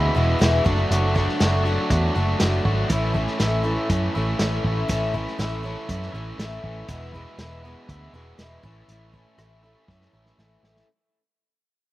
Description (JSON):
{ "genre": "folk rock and heartland rock", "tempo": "120 BPM", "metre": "4/4", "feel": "straight", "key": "A major", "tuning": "A4 = 440 Hz", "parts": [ { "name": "picked twelve-string acoustic guitar", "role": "accompaniment", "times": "0.0-10.9 s", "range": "E2 to F#4", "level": "-30 LUFS", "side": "left 3 dB", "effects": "slapback echo" }, { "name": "overdriven electric guitar", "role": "riff", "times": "0.0-10.9 s", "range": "E2 to F#4", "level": "-26 LUFS", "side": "right 1 dB", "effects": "slapback echo" }, { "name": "vintage muted picked electric bass", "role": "bass", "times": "0.0-10.8 s", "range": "E1 to F#2", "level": "-24 LUFS", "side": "equal", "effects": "none" }, { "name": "vintage drum kit", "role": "drums", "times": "0.4-10.9 s", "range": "hi-hat, kick drum, rim click, snare drum", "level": "-25 LUFS", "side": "equal", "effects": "none" } ], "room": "little or no reverb", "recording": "recorded outdoors, with no room sound", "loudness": "-20 LUFS", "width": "side -16 dB against mid", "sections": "0.0-10.9 A section", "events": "fade-out 0.0-10.9; drum fill 9.9-10.9", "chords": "0.0 E; 0.7 D/F#; 2.9 A; 6.9 E; 8.6 A" }